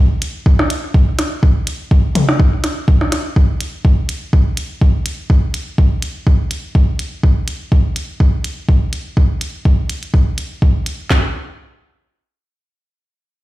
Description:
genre	techno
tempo	124 BPM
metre	4/4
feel	swing 55% on 16ths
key	none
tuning	none
part	electronic hi-hat	drums	0.2-11.0 s	none	-26 LUFS	right 1 dB	none
part	minimal click drum kit	drums	0.5-11.2 s	handclaps, kick drum, snare drum	-12 LUFS	equal	none
part	electronic percussion blips and toms	percussion	0.6-3.2 s	none	-18 LUFS	equal	ping-pong delay
room	little or no reverb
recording	played on a big sound system in a bare room, stone room reverb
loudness	-14 LUFS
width	side -17 dB against mid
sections	0.0-11.1 A section; 11.1-13.4 B section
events	none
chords	none

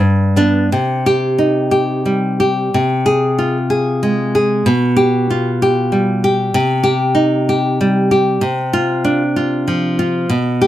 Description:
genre	romantic piece for solo classical guitar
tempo	77-99 BPM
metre	3/4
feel	rubato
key	C minor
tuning	A4 = 439 Hz
part	nylon-string guitar	solo	0.0-10.7 s	G2 to Ab4	-13 LUFS	equal	none
room	light reverb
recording	none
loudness	-13 LUFS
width	side -13 dB against mid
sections	0.7-10.7 A section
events	none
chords	0.0 G; 0.7 Cm; 2.7 Fm/C; 4.7 G7/B; 6.5 Cm; 8.4 Csus24

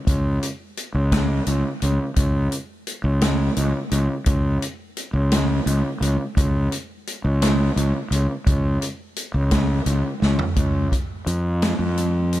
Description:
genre	psychedelic rock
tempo	57 BPM (dotted quarters)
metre	6/8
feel	straight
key	Db major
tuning	A4 = 440 Hz
part	fuzz fingered electric bass	bass	0.1-12.4 s	Db2 to F2	-20 LUFS	equal	overdrive
part	vintage drum kit	drums	0.1-12.4 s	hi-hat, kick drum, snare drum, toms	-24 LUFS	equal	none
room	light reverb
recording	none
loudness	-19 LUFS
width	side -14 dB against mid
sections	0.0-10.6 A section; 10.6-12.4 B section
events	drum fill 10.2-10.6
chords	none

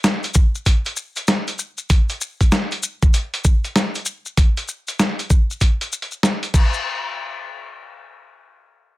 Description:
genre	glitch hop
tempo	97 BPM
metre	4/4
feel	swing 64% on 16ths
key	none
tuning	none
part	boom bap sampler-style drum kit	drums	0.0-6.7 s	crash cymbal, hi-hat, snare drum	-21 LUFS	equal	none
part	maracas	percussion	0.0-6.8 s	none	-27 LUFS	left 3 dB	none
part	electronic kick drum	drums	0.4-6.7 s	none	-14 LUFS	equal	overdrive
room	little or no reverb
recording	none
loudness	-17 LUFS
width	side -18 dB against mid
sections	0.0-6.8 A section; 6.8-9.0 B section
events	none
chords	none

